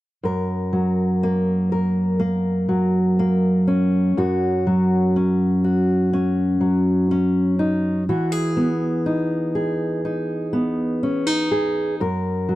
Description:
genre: folk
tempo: 61 BPM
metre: 4/4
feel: straight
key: F# mixolydian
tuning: A4 = 440 Hz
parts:
  - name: fingerpicked steel-string acoustic guitar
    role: accompaniment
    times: 0.2-12.6 s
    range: F#2 to A#4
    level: -18 LUFS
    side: equal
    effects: none
room: light reverb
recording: dry, close 1970s-style studio recording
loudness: -18 LUFS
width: side -16 dB against mid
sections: 0.2-12.6 A section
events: none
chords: 0.2 F#; 4.2 D#m7/F# (rootless); 8.1 Emaj7; 12.0 F#

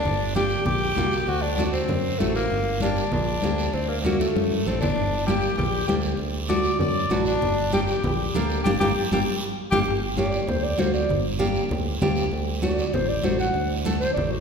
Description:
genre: latin, cumbia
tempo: 196 BPM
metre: 4/4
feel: straight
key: G harmonic minor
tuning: A4 = 441 Hz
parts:
  - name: growling tenor saxophone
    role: second line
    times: 0.0-9.8 s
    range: A3 to D5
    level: -26 LUFS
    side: left 2 dB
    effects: none
  - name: guiro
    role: percussion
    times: 0.0-14.4 s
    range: none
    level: -36 LUFS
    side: right 4 dB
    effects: none
  - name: fingered electric bass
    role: bass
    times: 0.1-14.4 s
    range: G1 to F#2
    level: -28 LUFS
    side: right 1 dB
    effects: none
  - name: congas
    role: percussion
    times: 0.1-14.3 s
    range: none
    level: -28 LUFS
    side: left 2 dB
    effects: none
  - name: nylon-string guitar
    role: accompaniment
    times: 0.3-14.1 s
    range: A3 to Bb4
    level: -27 LUFS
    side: right 2 dB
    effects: none
  - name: mellow clarinet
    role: melody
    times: 10.2-14.4 s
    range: F#4 to F#5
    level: -27 LUFS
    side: right 1 dB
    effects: none
room: wet scoring stage reverb, RT60 1.8 s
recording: recorded in a church or concert hall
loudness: -21 LUFS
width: side -6 dB against mid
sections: 0.1-9.9 A section; 9.9-14.4 B section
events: tenor saxophone solo 0.1-9.9; drum fill 4.2-5.0, 9.3-9.9; band accent 8.6-9.9; clarinet solo 9.9-14.4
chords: 0.1 Gm; 1.3 D7; 2.5 Gm; 3.7 D; 5.0 Gm; 6.2 D; 7.4 Gm; 12.3 D

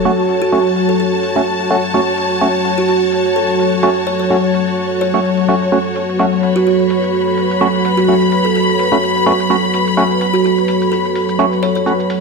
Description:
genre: bass house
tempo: 127 BPM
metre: 4/4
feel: swing 54% on 16ths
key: F# minor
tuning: A4 = 440 Hz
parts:
  - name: sweeping resonant pad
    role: sustained chords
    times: 0.0-12.2 s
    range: F#3 to C#5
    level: -17 LUFS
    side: left 1 dB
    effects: chorus, vintage 12-bit sampler grit
  - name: warm studio string section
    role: texture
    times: 0.0-12.2 s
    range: F#4 to B5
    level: -18 LUFS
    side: left 3 dB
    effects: none
  - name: percussive organ stab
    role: stabs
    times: 0.1-11.9 s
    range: A3 to F#4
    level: -17 LUFS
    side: right 2 dB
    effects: chorus, digital delay
  - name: electronic shaker and hi-hat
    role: drums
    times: 0.1-12.2 s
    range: none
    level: -37 LUFS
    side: right 2 dB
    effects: none
  - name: kalimba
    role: melody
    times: 0.4-11.8 s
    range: F#4 to C#5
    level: -18 LUFS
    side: right 4 dB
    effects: digital delay
room: moderate plate reverb, RT60 1.2 s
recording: none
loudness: -12 LUFS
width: side -4 dB against mid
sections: 0.0-12.2 A section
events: filter sweep on synth stab 0.0-12.2; filter sweep on analog synth pad 0.0-12.2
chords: 0.0 F#m

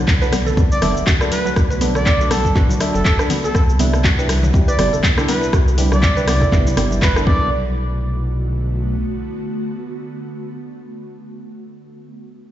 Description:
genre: afro house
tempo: 121 BPM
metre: 4/4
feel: swing 57% on 16ths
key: B phrygian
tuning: A4 = 438 Hz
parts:
  - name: ethereal airy pad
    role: sustained chords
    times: 0.0-11.8 s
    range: C3 to F#4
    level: -28 LUFS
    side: equal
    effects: ensemble chorus, built-in reverb, sidechain pumping
  - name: mallet-like synth pluck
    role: arpeggios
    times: 0.0-7.7 s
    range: F#3 to B4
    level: -25 LUFS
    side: right 2 dB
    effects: chorus, sidechain pumping, tape echo
  - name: round analog bass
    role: bass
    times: 0.0-9.0 s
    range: F#1 to C2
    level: -20 LUFS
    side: equal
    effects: sidechain pumping
  - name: afro-pop drum kit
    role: drums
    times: 0.1-7.3 s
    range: handclaps, hi-hat, rim click, shaker, toms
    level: -22 LUFS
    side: equal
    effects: small room reverb
  - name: electronic kick drum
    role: drums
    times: 0.1-7.4 s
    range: none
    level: -16 LUFS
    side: equal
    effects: small room reverb
  - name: deep mellow chord stab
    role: stabs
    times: 0.2-11.8 s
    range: D4 to E5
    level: -26 LUFS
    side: equal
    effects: chorus, sidechain pumping, tape echo
  - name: congas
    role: percussion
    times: 0.3-7.4 s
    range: none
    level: -26 LUFS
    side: left 1 dB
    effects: none
  - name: expressive synth lead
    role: melody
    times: 0.7-7.5 s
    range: A4 to D5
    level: -23 LUFS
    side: right 1 dB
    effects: chorus, tape echo
room: light reverb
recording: played on a big sound system in a bare room, large studio reverb, nothing above 7.8 kHz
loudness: -14 LUFS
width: side -12 dB against mid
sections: 0.0-7.5 A section; 7.5-11.5 B section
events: drop 0.0-7.5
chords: 0.0 Bm7; 3.5 Cmaj7; 7.3 Bm7

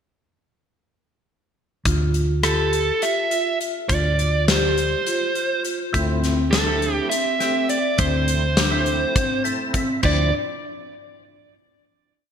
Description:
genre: progressive instrumental, band music in an uneven meter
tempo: 205 BPM (eighths)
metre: 7/8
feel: straight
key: D minor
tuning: A4 = 441 Hz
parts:
  - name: vibraphone with medium mallets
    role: arpeggios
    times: 1.9-10.3 s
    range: C4 to G4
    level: -26 LUFS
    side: left 2 dB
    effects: ping-pong delay
  - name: woody fretless electric bass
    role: bass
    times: 1.9-10.3 s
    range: D2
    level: -22 LUFS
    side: equal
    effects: none
  - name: big rock drum kit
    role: drums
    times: 1.9-10.2 s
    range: crash cymbal, hi-hat, kick drum, rim click, snare drum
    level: -24 LUFS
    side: left 1 dB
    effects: gated reverb
  - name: bluesy overdriven lead guitar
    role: melody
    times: 2.4-10.3 s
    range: A4 to E5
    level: -23 LUFS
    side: right 3 dB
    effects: distortion, ping-pong delay
  - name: percussive tonewheel organ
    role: accompaniment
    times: 5.9-10.3 s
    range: F3 to A5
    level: -29 LUFS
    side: equal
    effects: chorus vibrato, slow rotary speaker
room: wet lush hall reverb, RT60 1.8 s, studio ambience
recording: bright 1980s-style digital production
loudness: -18 LUFS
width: side -8 dB against mid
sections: 1.9-10.0 A section; 10.0-12.1 final chord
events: tonewheel organ fill 9.2-10.0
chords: 1.9 Dm7; 5.9 Am/D; 10.0 Dm7

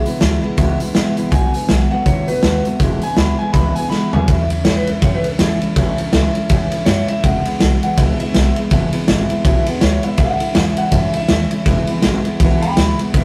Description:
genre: rockabilly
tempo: 162 BPM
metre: 4/4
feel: swing 59% on 8ths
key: E major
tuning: A4 = 445 Hz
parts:
  - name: electric guitar through a small old amp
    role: melody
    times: 0.0-13.0 s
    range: A4 to B5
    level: -26 LUFS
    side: equal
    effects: none
  - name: picked steel-string acoustic guitar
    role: accompaniment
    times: 0.0-13.2 s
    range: E2 to F#4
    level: -24 LUFS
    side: equal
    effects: none
  - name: upright bass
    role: bass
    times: 0.0-13.2 s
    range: E1 to F#2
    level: -23 LUFS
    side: equal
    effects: none
  - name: raw garage drum kit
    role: drums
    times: 0.1-13.2 s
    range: hi-hat, kick drum, ride cymbal, snare drum, toms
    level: -18 LUFS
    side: equal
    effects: none
room: light reverb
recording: rough rehearsal-room recording, warm saturation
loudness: -16 LUFS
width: mono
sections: 0.0-4.3 A section; 4.3-13.2 B section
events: drum fill 3.9-4.3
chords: 0.0 E; 1.3 B7; 2.8 E; 4.3 A; 7.2 E; 10.2 A; 11.7 E

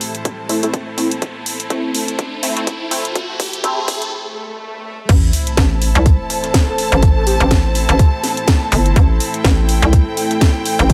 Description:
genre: bass house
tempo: 124 BPM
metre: 4/4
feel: swing 57% on 16ths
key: A minor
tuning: A4 = 440 Hz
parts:
  - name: dark analog pad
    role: sustained chords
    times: 0.0-10.9 s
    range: A3 to C5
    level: -28 LUFS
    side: equal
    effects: chorus, vintage 12-bit sampler grit, sidechain pumping
  - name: band-passed chord stab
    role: stabs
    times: 0.0-4.1 s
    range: A3 to E4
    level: -25 LUFS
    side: equal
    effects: phaser, ensemble chorus, vintage 12-bit sampler grit, sidechain pumping, dub echo
  - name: house drum kit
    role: drums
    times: 0.0-10.9 s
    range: crash cymbal, hi-hat, snare drum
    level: -24 LUFS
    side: equal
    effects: overdrive
  - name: riser, swell and sub drop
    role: sound effects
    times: 0.3-7.0 s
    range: none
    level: -28 LUFS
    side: equal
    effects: none
  - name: clear studio string section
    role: texture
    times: 0.0-10.9 s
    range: C4 to A5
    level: -27 LUFS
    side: equal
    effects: sidechain pumping
  - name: electronic kick drum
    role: drums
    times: 0.3-10.9 s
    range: none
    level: -15 LUFS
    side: equal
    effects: high-pass filter on kick
  - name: hollow knocking FM bass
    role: bass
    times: 5.1-10.9 s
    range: G1 to C2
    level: -16 LUFS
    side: equal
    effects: overdrive, sidechain pumping
  - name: breakbeat sampler-style drum kit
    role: drums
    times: 5.1-10.9 s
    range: hi-hat, snare drum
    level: -32 LUFS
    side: equal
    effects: none
  - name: breathy flute-like synth lead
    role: melody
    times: 6.7-7.5 s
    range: G4 to A4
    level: -29 LUFS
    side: equal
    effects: subtle chorus, dub echo
room: light reverb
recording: high-pass filter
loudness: -16 LUFS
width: mono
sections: 0.0-5.1 A section; 5.1-10.9 B section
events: build-up 0.0-5.1; riser 0.3-4.1; filter sweep on analog synth pad 0.0-5.1; drum fill 1.2-4.1; break 4.1-5.1; swell 4.1-5.1; drop 5.1-10.9; impact 5.1-7.0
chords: 0.0 Am

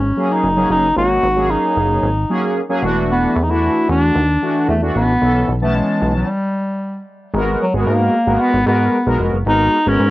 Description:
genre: early-eighties boogie funk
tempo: 113 BPM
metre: 4/4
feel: straight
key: G# phrygian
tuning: A4 = 440 Hz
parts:
  - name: warm bass clarinet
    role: melody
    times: 0.0-10.1 s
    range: F#3 to F#4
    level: -17 LUFS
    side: equal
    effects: cassette tape
  - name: plucky analog bass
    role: bass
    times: 0.0-10.1 s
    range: E1 to G#2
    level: -19 LUFS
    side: equal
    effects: none
  - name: mellow synth brass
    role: accompaniment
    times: 0.2-10.1 s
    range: E3 to A5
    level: -19 LUFS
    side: equal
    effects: chorus
room: moderate booth ambience, RT60 0.1 s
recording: home recording on cassette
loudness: -14 LUFS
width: side -17 dB against mid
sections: 0.0-7.3 A section; 7.3-10.1 B section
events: stop 6.3-7.3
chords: 0.0 G#9sus4; 2.8 E9sus4; 5.2 B9sus4; 6.3 N.C.; 7.3 G#m9

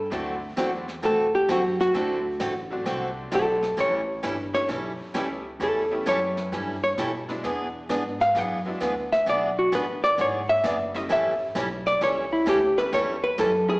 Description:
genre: country, western swing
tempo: 131 BPM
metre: 4/4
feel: swing 67% on 8ths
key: A mixolydian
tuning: A4 = 438 Hz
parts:
  - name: hollow-body jazz guitar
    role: melody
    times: 0.0-13.8 s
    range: E4 to F#5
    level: -22 LUFS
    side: equal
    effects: slapback echo
  - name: upright bass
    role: bass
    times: 0.0-13.8 s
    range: F#1 to B2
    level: -35 LUFS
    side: equal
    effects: none
  - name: picked acoustic archtop guitar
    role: accompaniment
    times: 0.1-13.5 s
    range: D3 to A4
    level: -29 LUFS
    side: right 1 dB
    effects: slapback echo
  - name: tack piano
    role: accompaniment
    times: 0.1-13.8 s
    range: F#3 to G4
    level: -34 LUFS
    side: equal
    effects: slapback echo
  - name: vintage brush drum kit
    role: drums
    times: 0.1-13.8 s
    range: brushed snare drum, hi-hat, snare drum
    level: -38 LUFS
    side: equal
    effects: slapback echo
room: wet club reverb, RT60 0.8 s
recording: live gig heard through the venue's PA, recital hall reverb, small speaker sound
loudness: -22 LUFS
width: side -26 dB against mid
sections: 0.0-13.8 A section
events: hollow-body jazz guitar solo 0.0-13.8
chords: 0.1 D9; 3.8 A9; 7.4 E9; 11.1 A9

